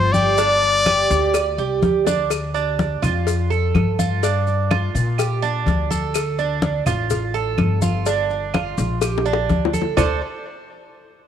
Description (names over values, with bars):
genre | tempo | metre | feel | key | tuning
latin, Cuban son and guajira | 125 BPM | 4/4 | straight | D minor | A4 = 440 Hz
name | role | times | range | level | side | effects
warm trumpet | melody | 0.0-1.8 s | C5 to D5 | -18 LUFS | left 3 dB | tape echo
Cuban tres | arpeggios | 0.0-10.2 s | D4 to D5 | -22 LUFS | right 9 dB | tape echo
upright bass | bass | 0.0-10.2 s | G1 to Bb2 | -22 LUFS | left 2 dB | none
congas | percussion | 0.1-10.1 s | none | -23 LUFS | left 2 dB | none
maracas | percussion | 0.1-10.1 s | none | -34 LUFS | left 13 dB | none
cowbell and bongos | percussion | 0.4-10.1 s | none | -25 LUFS | left 13 dB | none
claves | percussion | 0.9-10.1 s | none | -34 LUFS | right 10 dB | none
room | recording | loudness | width
light reverb, studio reverb | 1960s-style stereo with parts hard left and right | -17 LUFS | side -9 dB against mid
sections
0.0-2.3 A section; 2.3-10.0 B section; 10.0-11.3 C section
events
drum fill 2.1, 9.0-10.0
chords
0.4 G5; 2.3 Dm; 4.2 Gm7; 6.1 Dm; 8.1 Gm7; 10.0 D5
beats
| 0.38 0.86 1.34 1.82 | 2.31 2.79 3.27 3.75 | 4.23 4.71 5.19 5.67 | 6.15 6.63 7.11 7.58 | 8.06 8.54 9.02 9.50 | 9.97